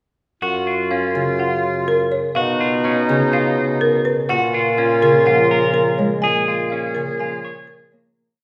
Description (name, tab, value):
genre	classical, minimalist pattern music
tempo	124 BPM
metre	4/4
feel	straight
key	F# major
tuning	A4 = 436 Hz
part	folk marimba with hard mallets	melody	0.4-8.2 s	A#4 to G#5	-24 LUFS	equal	none
part	warm oboe	second line	0.4-7.9 s	D#4 to G#4	-27 LUFS	equal	none
part	clean electric guitar	arpeggios	0.4-7.8 s	C#4 to C#5	-25 LUFS	equal	none
part	dark bassoon	bass	0.4-8.0 s	F#2 to B2	-23 LUFS	equal	none
part	Celtic harp	accompaniment	1.1-8.2 s	C#3 to A#3	-26 LUFS	equal	none
room	wet recital hall reverb, RT60 1.7 s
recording	recorded in a church or concert hall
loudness	-18 LUFS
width	mono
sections	0.4-8.2 A section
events	fade-out 6.2-8.2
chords	0.4 F#maj7(no3); 2.4 Badd9(#11); 4.3 F#maj9/A#; 6.2 A#m7